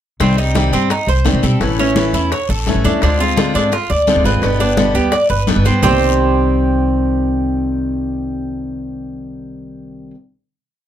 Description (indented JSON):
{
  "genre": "latin, Cuban son and guajira",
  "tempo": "171 BPM",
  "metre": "4/4",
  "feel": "straight",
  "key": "C harmonic minor",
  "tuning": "A4 = 440 Hz",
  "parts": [
    { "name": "picked steel-string acoustic guitar", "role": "accompaniment", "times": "0.2-10.2 s", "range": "B2 to G4", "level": "-18 LUFS", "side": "left 2 dB", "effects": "none" },
    { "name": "Cuban tres", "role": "arpeggios", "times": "0.2-10.1 s", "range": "C4 to D5", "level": "-18 LUFS", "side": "right 3 dB", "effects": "none" },
    { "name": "upright bass", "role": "bass", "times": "0.2-10.1 s", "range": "G1 to Ab2", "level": "-18 LUFS", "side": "equal", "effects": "none" },
    { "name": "bongos", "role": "percussion", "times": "0.2-5.9 s", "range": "none", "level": "-26 LUFS", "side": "left 5 dB", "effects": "none" },
    { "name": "congas", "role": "percussion", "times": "0.2-5.9 s", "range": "none", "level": "-22 LUFS", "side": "equal", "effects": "none" },
    { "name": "guiro", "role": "percussion", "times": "0.2-5.9 s", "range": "none", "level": "-30 LUFS", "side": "left 7 dB", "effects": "none" }
  ],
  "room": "moderate small room ambience, RT60 0.5 s",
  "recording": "none",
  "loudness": "-13 LUFS",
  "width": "side -10 dB against mid",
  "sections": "0.2-5.8 verse; 5.8-8.6 final chord",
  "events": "none",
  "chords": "0.2 Cm; 1.6 A; 3.0 Dm7b5; 4.4 G; 5.8 Cm"
}